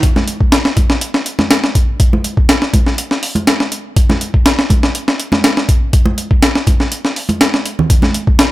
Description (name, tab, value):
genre	breakbeat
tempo	122 BPM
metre	4/4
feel	straight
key	none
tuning	none
part	breakbeat sampler-style drum kit	drums	0.0-8.5 s	hi-hat, kick drum, snare drum	-11 LUFS	equal	none
part	congas	percussion	0.2-8.1 s	none	-20 LUFS	right 2 dB	none
room	little or no reverb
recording	none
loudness	-11 LUFS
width	side -17 dB against mid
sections	0.0-8.5 A section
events	none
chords	none